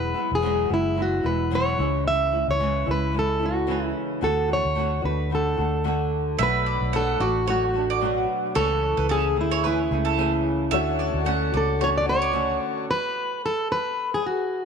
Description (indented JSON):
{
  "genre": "acoustic pop",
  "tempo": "111 BPM",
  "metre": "4/4",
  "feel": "swing 55% on 16ths",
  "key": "unclear",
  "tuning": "A4 = 442 Hz",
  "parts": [
    { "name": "fingerpicked plugged-in steel-string acoustic guitar", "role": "melody", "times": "0.0-14.7 s", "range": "E4 to E5", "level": "-24 LUFS", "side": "equal", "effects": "none" },
    { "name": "flamenco guitar", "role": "accompaniment", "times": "0.0-13.4 s", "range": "E2 to G#4", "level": "-28 LUFS", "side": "equal", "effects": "double-tracked left and right" },
    { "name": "vintage muted fingered electric bass", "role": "bass", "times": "0.0-12.6 s", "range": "E1 to D2", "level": "-27 LUFS", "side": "equal", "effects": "none" },
    { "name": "bowl-back mandolin", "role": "arpeggios", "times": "6.4-12.3 s", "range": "A4 to F#5", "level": "-28 LUFS", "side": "right 10 dB", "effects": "tape echo" },
    { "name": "dark upright piano", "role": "accompaniment", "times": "10.7-12.9 s", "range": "A3 to C#5", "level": "-33 LUFS", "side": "left 12 dB", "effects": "none" },
    { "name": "hand-pumped harmonium", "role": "sustained chords", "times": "10.7-12.9 s", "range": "F#4 to A5", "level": "-33 LUFS", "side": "left 11 dB", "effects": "stereo widening" }
  ],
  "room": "light reverb, studio reverb",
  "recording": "1960s-style stereo with parts hard left and right",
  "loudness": "-21 LUFS",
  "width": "side -6 dB against mid",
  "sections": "0.0-6.4 A section; 6.4-14.7 B section",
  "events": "stop 12.9-14.7",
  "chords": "0.0 Eadd9; 1.8 C#m; 4.2 D; 6.4 Bm7; 8.6 Amaj7/C#; 10.7 Dmaj7; 12.9 N.C.",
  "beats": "0.43 0.97 1.52 | 2.06 2.60 3.14 3.68 | 4.23 4.77 5.31 5.85 | 6.39 6.93 7.47 8.02 | 8.56 9.10 9.64 10.18 | 10.72 11.26 11.80 12.34 | 12.88 13.42 13.96 14.50"
}